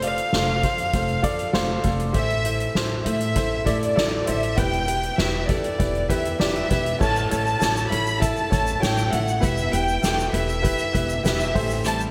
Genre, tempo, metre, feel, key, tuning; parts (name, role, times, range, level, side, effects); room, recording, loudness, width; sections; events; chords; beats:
piano-driven pop; 99 BPM; 4/4; straight; E phrygian; A4 = 440 Hz
warm chamber violin section; melody; 0.0-12.0 s; D5 to B5; -28 LUFS; equal
warm upright piano; accompaniment; 0.0-12.1 s; A2 to E5; -29 LUFS; equal
upright bass; bass; 0.0-12.1 s; E1 to A2; -29 LUFS; equal
soft-mallet drum kit; drums; 0.0-12.0 s; crash cymbal, hi-hat, kick drum, snare drum; -28 LUFS; equal; gated reverb
tube shaker; percussion; 7.0-12.1 s; -42 LUFS; equal
clean electric guitar; riff; 11.8-12.1 s; A2 to E4; -29 LUFS; equal; subtle chorus
moderate plate reverb, RT60 2.6 s; bright 1980s-style digital production; -22 LUFS; mono
0.0-7.0 A section; 7.0-12.1 B section
0.0 F; 2.2 Am; 4.6 Em; 7.0 A; 9.4 Em; 11.6 Am7
0.34 0.94 1.55 | 2.16 2.76 3.37 3.98 | 4.58 5.19 5.79 6.40 | 7.01 7.61 8.22 8.83 | 9.43 10.04 10.65 11.25 | 11.86